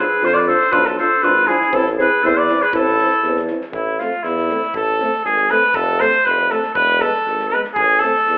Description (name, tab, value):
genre	balkan folk, Balkan brass band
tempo	120 BPM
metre	2/4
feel	straight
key	A harmonic minor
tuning	A4 = 439 Hz
part	clear trumpet	melody	0.0-8.4 s	E4 to D5	-15 LUFS	equal	none
part	bright clarinet	second line	0.0-3.4 s	E4 to B4	-20 LUFS	equal	none
part	dark euphonium	accompaniment	0.0-8.1 s	E3 to A3	-24 LUFS	equal	none
part	mellow euphonium	accompaniment	0.0-8.1 s	B3 to D4	-26 LUFS	equal	none
part	mellow tuba	bass	0.2-8.4 s	E1 to F2	-23 LUFS	equal	none
part	natural country drum kit	percussion	0.2-8.3 s	kick drum, snare drum	-35 LUFS	equal	none
room	moderate large studio reverb, RT60 0.9 s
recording	band playing live in one room, telephone sound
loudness	-14 LUFS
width	side -26 dB against mid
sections	0.0-3.7 A section; 3.7-8.4 B section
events	trumpet solo 3.7-8.4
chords	0.0 Bdim; 1.7 Am; 5.7 F; 6.8 E; 7.8 Am